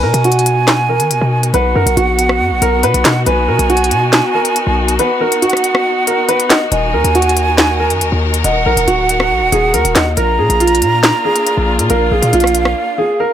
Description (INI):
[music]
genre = hip hop, drill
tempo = 139 BPM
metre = 4/4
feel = half-time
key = unclear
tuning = A4 = 440 Hz
[part]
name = dark grand piano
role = melody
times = 0.0-13.3 s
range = F4 to D#5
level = -16 LUFS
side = right 1 dB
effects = none
[part]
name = breathy mellow silver concert flute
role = second line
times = 0.0-13.3 s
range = F5 to Bb5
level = -17 LUFS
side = right 4 dB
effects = ping-pong delay
[part]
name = clear symphonic string section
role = sustained chords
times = 0.0-13.3 s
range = Eb3 to Bb4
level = -21 LUFS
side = left 3 dB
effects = none
[part]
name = hard-hitting 808-style bass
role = bass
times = 0.0-12.7 s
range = D1 to D#3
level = -16 LUFS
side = left 1 dB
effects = none
[part]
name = drill drum kit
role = drums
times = 0.1-12.8 s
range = handclaps, hi-hat, rim click, snare drum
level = -14 LUFS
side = left 1 dB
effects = none
[sound]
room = small room ambience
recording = none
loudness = -11 LUFS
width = side -10 dB against mid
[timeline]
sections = 0.0-13.3 A section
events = kick muted 5.0-6.7; break 12.8-13.3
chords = 0.0 B; 6.7 Ebm; 10.2 Bb